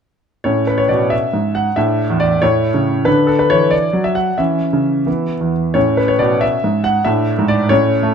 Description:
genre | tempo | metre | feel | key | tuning
classical-period piano sonatina | 92 BPM (dotted quarters) | 6/8 | rubato | A major | A4 = 443 Hz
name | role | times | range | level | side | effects
clear grand piano | solo | 0.4-8.1 s | E2 to F#5 | -13 LUFS | equal | none
room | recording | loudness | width
moderate large studio reverb, RT60 1.2 s | dark, warm production | -13 LUFS | side -7 dB against mid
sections
0.5-8.1 A section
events
none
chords
0.5 A; 1.8 E7sus4; 2.4 A; 3.1 D; 4.4 C#m; 5.1 E5; 5.8 A; 7.1 E7/A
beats
| 0.46 1.12 | 1.78 2.42 | 3.07 3.73 | 4.39 5.07 | 5.76 6.42 | 7.07 7.71

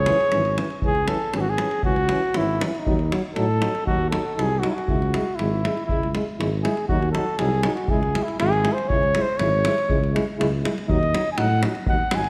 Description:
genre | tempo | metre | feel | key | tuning
balkan folk, Balkan brass band | 119 BPM | 2/4 | straight | C# harmonic minor | A4 = 442 Hz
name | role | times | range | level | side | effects
mellow flugelhorn | melody | 0.0-12.3 s | D#4 to G#5 | -26 LUFS | equal | none
mellow trumpet | second line | 0.0-0.6 s | G#4 | -39 LUFS | equal | none
dark tuba | bass | 0.0-12.3 s | G#1 to A2 | -28 LUFS | equal | none
mellow euphonium | accompaniment | 0.1-12.2 s | E3 to G#3 | -33 LUFS | equal | none
mellow trombone | accompaniment | 0.1-12.2 s | C#4 to E4 | -35 LUFS | equal | none
davul | percussion | 0.1-12.3 s | none | -29 LUFS | equal | none
room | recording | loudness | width
moderate concert hall reverb, RT60 2.2 s | none | -22 LUFS | mono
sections
0.8-12.3 A section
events
speeding up 0.0-12.3; flugelhorn solo 0.8-12.3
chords
0.0 C#m; 2.9 D#dim; 4.9 C#m; 6.9 Cdim7; 7.9 C#m; 10.9 D#dim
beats
0.32 | 0.83 1.34 | 1.85 2.35 | 2.86 3.37 | 3.88 4.38 | 4.88 5.39 | 5.89 6.39 | 6.90 7.40 | 7.90 8.40 | 8.90 9.39 | 9.89 10.39 | 10.88 11.38 | 11.87

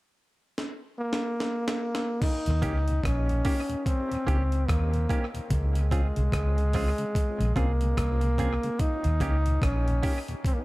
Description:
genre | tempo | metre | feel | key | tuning
roots reggae | 73 BPM | 4/4 | swing 60% on 16ths | Eb mixolydian | A4 = 442 Hz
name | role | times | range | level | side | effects
breakbeat sampler-style drum kit | drums | 0.6-10.6 s | crash cymbal, hi-hat, kick drum, rim click, snare drum | -29 LUFS | equal | tape echo
clear trombone | melody | 1.0-10.6 s | Ab3 to Eb4 | -30 LUFS | equal | dub echo
mellow tonewheel organ | accompaniment | 2.5-10.3 s | Eb2 to G4 | -38 LUFS | left 2 dB | slow rotary speaker, tape echo
vintage muted fingered electric bass | bass | 2.5-10.0 s | Bb1 to Eb2 | -25 LUFS | equal | none
semi-hollow electric guitar | accompaniment | 2.6-10.2 s | Bb3 to Ab4 | -38 LUFS | right 5 dB | dub echo
room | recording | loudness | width
little or no reverb | echo-heavy mix | -24 LUFS | side -19 dB against mid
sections
0.0-2.2 A section; 2.2-10.6 B section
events
drum fill 0.6-2.2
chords
0.0 N.C.; 2.2 Eb7; 5.5 Dbmaj7; 8.8 Eb7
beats
0.57 1.39 | 2.21 3.04 3.86 4.68 | 5.50 6.33 7.15 7.97 | 8.80 9.62 10.44

